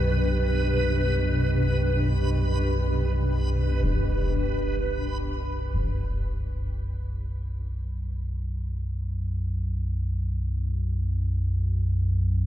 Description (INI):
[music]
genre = dark ambient drone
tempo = free time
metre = none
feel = none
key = B minor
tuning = A4 = 441 Hz
[part]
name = granular cloud pad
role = sustained chords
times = 0.0-3.9 s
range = B2 to B4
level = -29 LUFS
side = equal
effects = built-in reverb, shimmer reverb
[part]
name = deep rumbling drone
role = drone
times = 0.0-12.5 s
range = B1 to F#2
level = -26 LUFS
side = equal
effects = built-in reverb, lush chorus
[part]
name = backwards swelling texture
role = texture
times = 0.0-3.9 s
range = B4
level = -32 LUFS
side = right 2 dB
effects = built-in reverb, shimmer reverb
[part]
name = concert bass drum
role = percussion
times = 3.8-5.9 s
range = none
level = -30 LUFS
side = equal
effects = low-pass filter on kick
[sound]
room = moderate cathedral reverb, RT60 5.3 s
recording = none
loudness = -24 LUFS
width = side -12 dB against mid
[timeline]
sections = 0.0-3.8 A section; 3.8-12.5 B section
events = none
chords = 0.0 Gmaj7/B; 3.8 B5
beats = free time